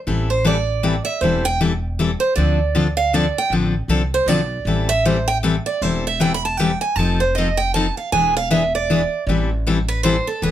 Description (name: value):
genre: acoustic string swing (jazz manouche)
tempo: 156 BPM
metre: 3/4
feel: swing 62% on 8ths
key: A minor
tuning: A4 = 439 Hz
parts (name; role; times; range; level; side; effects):
- picked steel-string acoustic guitar; accompaniment; 0.1-10.5 s; D3 to A4; -19 LUFS; left 4 dB; none
- upright bass; bass; 0.1-10.5 s; E1 to D2; -23 LUFS; equal; none
- picked steel-string acoustic guitar; second line; 0.3-10.5 s; A4 to B5; -20 LUFS; right 4 dB; none
room: light reverb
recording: none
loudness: -16 LUFS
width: side -11 dB against mid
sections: 0.0-10.5 A section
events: steel-string acoustic guitar solo 0.0-10.5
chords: 0.0 Am7; 2.4 Dm7; 4.7 Am7; 7.0 F7; 8.1 E7; 9.3 Am7